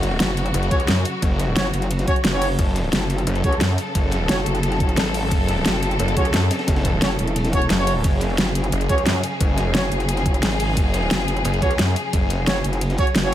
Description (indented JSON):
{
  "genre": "dark technical drum and bass",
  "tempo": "176 BPM",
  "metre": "4/4",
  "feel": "straight",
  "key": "F# minor",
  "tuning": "A4 = 440 Hz",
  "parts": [
    { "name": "clear symphonic string section", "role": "sustained chords", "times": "0.0-13.3 s", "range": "C#3 to A4", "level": "-26 LUFS", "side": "left 1 dB", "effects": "sidechain pumping" },
    { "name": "snarling distorted saw bass", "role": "bass", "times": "0.0-12.5 s", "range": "F#1 to F#2", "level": "-22 LUFS", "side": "equal", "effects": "overdrive, sidechain pumping" },
    { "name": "crunchy breakbeat drum kit", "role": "drums", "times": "0.0-13.3 s", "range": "hi-hat, ride cymbal, snare drum", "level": "-33 LUFS", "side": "equal", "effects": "none" },
    { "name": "dubstep drum kit", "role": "drums", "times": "0.0-13.2 s", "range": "hi-hat, snare drum", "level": "-24 LUFS", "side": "equal", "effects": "overdrive" },
    { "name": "metallic wobble bass", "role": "bass", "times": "0.2-13.3 s", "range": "E1 to C#2", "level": "-22 LUFS", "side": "equal", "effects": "distortion, chorus" },
    { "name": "bright brass ensemble", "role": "stabs", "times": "0.7-13.3 s", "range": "C#4 to C#5", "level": "-26 LUFS", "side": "right 1 dB", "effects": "ping-pong delay" },
    { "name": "electronic kick drum", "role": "drums", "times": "0.7-13.1 s", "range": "none", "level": "-21 LUFS", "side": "equal", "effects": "overdrive" }
  ],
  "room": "light reverb, small room ambience",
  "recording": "none",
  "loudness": "-18 LUFS",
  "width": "side -12 dB against mid",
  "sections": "0.0-13.3 A section",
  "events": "none",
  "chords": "0.0 F#5",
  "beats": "0.20 0.54 0.88 | 1.22 1.56 1.91 2.25 | 2.59 2.93 3.27 3.61 | 3.95 4.29 4.63 4.97 | 5.31 5.66 6.00 6.34 | 6.68 7.02 7.36 7.70 | 8.04 8.38 8.72 9.06 | 9.40 9.75 10.09 10.43 | 10.77 11.11 11.45 11.79 | 12.13 12.47 12.81 13.15"
}